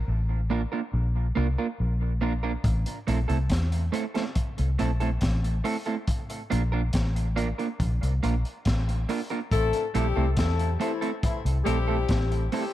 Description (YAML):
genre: dub reggae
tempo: 70 BPM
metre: 4/4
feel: straight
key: A phrygian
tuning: A4 = 440 Hz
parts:
  - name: vintage muted fingered electric bass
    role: bass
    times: 0.1-12.5 s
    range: A1 to E2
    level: -25 LUFS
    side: equal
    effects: none
  - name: electric guitar at the edge of break-up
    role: accompaniment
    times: 0.5-12.6 s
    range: A3 to Bb4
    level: -31 LUFS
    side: right 5 dB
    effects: wide subtle chorus, dub echo
  - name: crunchy breakbeat drum kit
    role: drums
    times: 2.6-12.7 s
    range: hi-hat, kick drum, snare drum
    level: -30 LUFS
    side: equal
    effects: none
  - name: mellow horn section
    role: second line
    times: 9.5-12.5 s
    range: E3 to A4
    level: -29 LUFS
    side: left 6 dB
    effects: dub echo
room: small room reverb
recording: echo-heavy mix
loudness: -24 LUFS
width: side -14 dB against mid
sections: 0.0-12.7 A section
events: break 0.0-2.6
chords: 0.0 Bb; 2.6 Am; 6.1 Bb; 9.5 Am